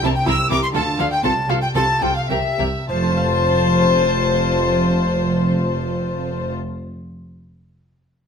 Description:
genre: classical, baroque-style concerto movement with solo episodes.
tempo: 98-131 BPM.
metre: 3/4.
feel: straight.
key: F major.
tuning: A4 = 441 Hz.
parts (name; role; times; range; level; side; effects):
alto recorder; melody; 0.0-6.5 s; C5 to E6; -23 LUFS; equal; none.
rich chamber violin section; melody; 0.0-6.5 s; E5 to E6; -26 LUFS; left 1 dB; none.
rich chamber violin section; second line; 0.0-6.5 s; A4 to C5; -25 LUFS; left 5 dB; none.
dark chamber viola section; accompaniment; 0.0-6.5 s; E4 to G4; -26 LUFS; left 5 dB; none.
lute; accompaniment; 0.0-6.8 s; C3 to F5; -26 LUFS; right 1 dB; none.
rich chamber cello section; bass; 0.0-6.5 s; F2 to D3; -24 LUFS; right 2 dB; none.
rich chamber double bass section; bass; 0.0-6.5 s; F1 to D2; -23 LUFS; right 1 dB; none.
room: moderate recital hall reverb, RT60 1.2 s.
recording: close, detailed microphones.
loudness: -16 LUFS.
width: side -6 dB against mid.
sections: 0.0-2.9 A section; 2.9-6.5 B section.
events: slowing down 0.0-2.9.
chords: 0.0 C7; 0.7 Dm; 1.2 F/C; 2.3 C7; 2.9 F.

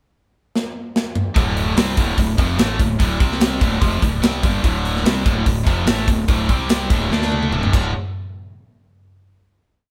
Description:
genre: hard rock.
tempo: 146 BPM.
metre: 4/4.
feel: straight.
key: unclear.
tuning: A4 = 440 Hz.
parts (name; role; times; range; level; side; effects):
tight metal drum kit; drums; 0.6-7.8 s; crash cymbal, hi-hat, kick drum, snare drum, toms; -21 LUFS; equal; none.
scooped high-gain guitar; riff; 1.3-7.9 s; D2 to D4; -26 LUFS; equal; distortion.
distorted electric guitar; riff; 1.4-7.9 s; D2 to D4; -27 LUFS; equal; distortion.
fuzz fingered electric bass; bass; 1.4-7.9 s; D1 to D2; -26 LUFS; equal; overdrive.
room: light reverb.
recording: band playing live in one room.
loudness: -19 LUFS.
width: mono.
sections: 0.0-1.4 pickup bar; 1.4-7.9 riff; 7.9-9.6 final hit.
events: drum fill 0.5-1.4, 7.1-7.9.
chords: 0.0 N.C.; 1.4 D5; 3.2 C5; 3.6 D5; 6.5 C5; 6.9 D5; 7.9 N.C..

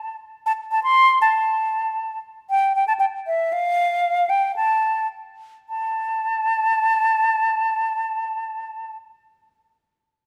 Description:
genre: andean folk.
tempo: 96-119 BPM.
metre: 2/4.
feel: straight.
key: A minor.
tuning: A4 = 440 Hz.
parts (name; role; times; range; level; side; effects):
mellow hollow silver concert flute; solo; 0.0-9.0 s; E5 to C6; -21 LUFS; equal; none.
room: moderate scoring stage reverb, RT60 1.8 s.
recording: none.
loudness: -21 LUFS.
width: mono.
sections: 0.0-5.7 A section; 5.7-8.2 B section.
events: slowing down 3.5-5.7.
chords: none.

